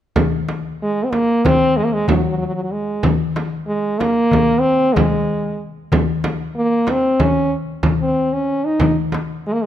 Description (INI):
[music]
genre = Turkish makam ensemble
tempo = 187 BPM (eighths)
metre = 9/8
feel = straight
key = unclear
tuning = A4 = 440 Hz
[part]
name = darbuka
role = percussion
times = 0.2-9.5 s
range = none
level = -22 LUFS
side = left 5 dB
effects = none
[part]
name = frame drum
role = percussion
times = 0.2-9.3 s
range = none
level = -20 LUFS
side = right 3 dB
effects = none
[part]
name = clear French horn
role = melody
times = 0.8-9.7 s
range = Gb3 to Eb4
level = -17 LUFS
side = equal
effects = none
[sound]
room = light reverb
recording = close, detailed microphones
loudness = -15 LUFS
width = side -11 dB against mid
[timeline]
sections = 0.2-9.7 A section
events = none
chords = none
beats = | 0.17 0.48 0.81 1.12 1.45 1.76 2.08 2.40 2.72 | 3.04 3.36 3.68 4.00 4.32 4.64 4.96 5.29 5.61 | 5.92 6.25 6.57 6.89 7.21 7.53 7.85 8.17 8.49 | 8.81 9.13 9.45